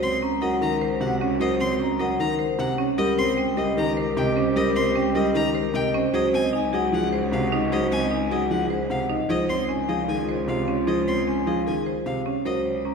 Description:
classical, minimalist pattern music; 152 BPM; 4/4; straight; Db major; A4 = 439 Hz
vibraphone with medium mallets; melody; 0.0-12.9 s; G4 to Bb5; -26 LUFS; left 4 dB
dark clarinet; second line; 0.0-12.9 s; F4 to G4; -33 LUFS; right 3 dB
dark baby grand piano; accompaniment; 0.0-12.7 s; C3 to C4; -26 LUFS; right 2 dB
buzzing marimba with hard mallets; arpeggios; 0.0-12.9 s; Db4 to C5; -30 LUFS; right 5 dB
clear violin; arpeggios; 0.0-12.6 s; Eb5 to C6; -32 LUFS; left 3 dB
rich cello; bass; 0.0-12.9 s; Db2; -30 LUFS; left 1 dB
wet scoring stage reverb, RT60 2.1 s; heard from further back in the room; -21 LUFS; side -5 dB against mid
0.0-12.9 A section
0.0 Ebm7/Db; 3.0 Eb7/Db; 6.1 Ab7/Db; 9.3 Dbmaj7
0.22 0.61 1.00 | 1.40 1.79 2.19 2.58 | 2.98 3.37 3.77 4.16 | 4.56 4.95 5.35 5.74 | 6.14 6.53 6.93 7.32 | 7.72 8.11 8.51 8.90 | 9.29 9.69 10.08 10.48 | 10.87 11.27 11.66 12.06 | 12.45 12.85

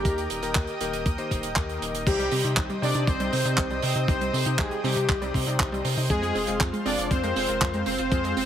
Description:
italo disco; 119 BPM; 4/4; straight; A4 = 441 Hz
analog synth brass; melody; 0.0-8.5 s; G3 to D5; -28 LUFS; left 1 dB; chorus, cassette tape, digital delay
lush unison pad; sustained chords; 0.0-8.5 s; F4 to Eb6; -34 LUFS; equal; chorus
round analog bass; bass; 0.0-8.5 s; Eb1 to C3; -30 LUFS; equal
warm electric grand piano; stabs; 0.1-8.5 s; C3 to D5; -33 LUFS; left 3 dB
electronic kick drum; drums; 0.1-8.2 s; -26 LUFS; equal
tight funk drum kit; drums; 0.1-8.5 s; crash cymbal, handclaps, hi-hat; -30 LUFS; right 2 dB
analog pluck; arpeggios; 2.1-8.5 s; Eb3 to F4; -33 LUFS; right 3 dB; chorus, cassette tape, tape echo
light reverb, small room reverb; heavily compressed radio sound; -23 LUFS; side -10 dB against mid
0.0-2.1 A section; 2.1-8.5 B section
0.1 Eb; 2.1 Cm; 6.1 Fm
| 0.05 0.55 1.06 1.56 | 2.07 2.57 3.08 3.58 | 4.08 4.59 5.09 5.60 | 6.10 6.61 7.11 7.61 | 8.12

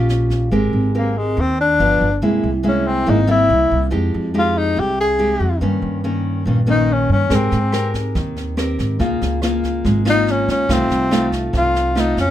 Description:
bossa nova; 142 BPM; 4/4; straight; Ab major; A4 = 440 Hz
breathy tenor saxophone; melody; 0.0-12.3 s; Ab3 to Ab4; -17 LUFS; left 2 dB
nylon-string guitar; accompaniment; 0.0-12.3 s; G2 to Bb4; -20 LUFS; equal
upright bass; bass; 0.0-12.3 s; G1 to Ab2; -20 LUFS; equal
jazz brush drum kit; drums; 0.1-0.4, 7.3-12.2 s; kick drum, rim click, snare drum; -26 LUFS; equal
light reverb; minimal, uncompressed stereo recording; -15 LUFS; side -12 dB against mid
0.5-12.3 A section
tenor saxophone solo 0.5-12.3
0.0 D#9 (rootless); 0.5 Abmaj9; 1.8 G7; 2.2 C7b13; 3.5 C7; 3.9 Fm9; 5.6 Eb7/G; 7.3 Abmaj9; 9.0 Db69; 10.7 F7/C
0.09 | 0.52 0.94 1.37 1.79 | 2.21 2.64 3.06 3.49 | 3.91 4.34 4.76 5.18 | 5.61 6.03 6.46 6.88 | 7.30 7.73 8.15 8.57 | 9.00 9.42 9.84 10.27 | 10.69 11.11 11.54 11.96

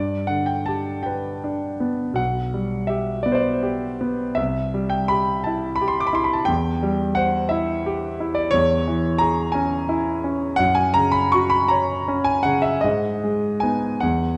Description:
classical, romantic nocturne for solo piano; 47-60 BPM (dotted quarters); 6/8; rubato; A4 = 440 Hz
warm concert grand piano; solo; 0.0-14.4 s; B1 to D6; -22 LUFS; equal
wet recital hall reverb, RT60 1.5 s; nothing above 10.6 kHz; -22 LUFS; mono
0.0-14.4 A section
0.0 G; 2.2 G/B; 4.4 C; 6.5 C/E; 8.6 C#m/E; 10.6 F#5; 12.8 G#m
1.07 | 2.19 3.26 | 4.38 5.46 | 6.49 7.52 | 8.56 9.57 | 10.60 11.72 | 12.84 14.02

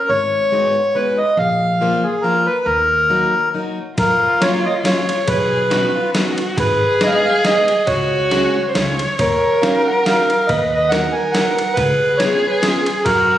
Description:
musette waltz; 139 BPM; 3/4; swing 55% on 8ths, rubato; Eb minor, F# major from 4.0 s; A4 = 440 Hz
accordion; melody; 0.0-13.4 s; Ab4 to G#5; -16 LUFS; equal
upright bass; bass; 0.1-13.4 s; Ab1 to F#2; -24 LUFS; equal
picked plugged-in steel-string acoustic guitar; accompaniment; 0.5-12.9 s; F3 to A#4; -22 LUFS; left 2 dB
dark violin; second line; 4.0-13.4 s; E#4 to C#5; -20 LUFS; right 1 dB
boom bap sampler-style drum kit; drums; 4.0-13.2 s; kick drum, ride cymbal, snare drum; -22 LUFS; equal
moderate studio reverb, RT60 0.5 s; recorded on a phone in the room, studio reverb; -14 LUFS; side -12 dB against mid
0.0-4.0 A section; 4.0-13.4 B section
0.1 Abm7; 1.4 Bb; 2.7 Ebm; 4.0 F#maj7; 5.3 Badd9; 6.6 G#m; 7.9 C#sus4; 8.8 C#add9; 9.2 D#m7; 10.5 Bmaj7/D#; 11.8 C#7
| 0.09 0.52 0.95 | 1.37 1.80 2.23 | 2.66 3.09 3.54 | 3.98 4.42 4.85 | 5.29 5.72 6.15 | 6.58 7.01 7.44 | 7.88 8.31 8.75 | 9.20 9.63 10.07 | 10.50 10.93 11.35 | 11.78 12.20 12.63 | 13.06

